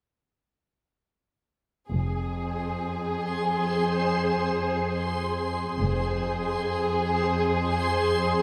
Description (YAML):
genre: cinematic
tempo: free time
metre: none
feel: none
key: F minor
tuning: A4 = 441 Hz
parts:
  - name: muted studio violin section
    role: melody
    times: 1.9-8.4 s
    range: Ab4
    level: -32 LUFS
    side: equal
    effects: none
  - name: backwards swelling texture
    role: sustained chords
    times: 2.7-8.4 s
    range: Ab4 to C6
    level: -32 LUFS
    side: equal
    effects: built-in reverb
  - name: muted studio cello section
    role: bass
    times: 1.9-8.4 s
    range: F2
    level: -32 LUFS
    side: equal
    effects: none
  - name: muted studio double bass section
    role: bass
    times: 1.9-6.5 s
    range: F1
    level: -32 LUFS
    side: equal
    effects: none
  - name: celesta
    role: texture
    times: 3.5-8.4 s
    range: Ab5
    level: -37 LUFS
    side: equal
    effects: none
room: moderate scoring stage reverb, RT60 2.0 s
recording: none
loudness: -27 LUFS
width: mono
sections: 1.9-8.4 A section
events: none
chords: 1.9 Fm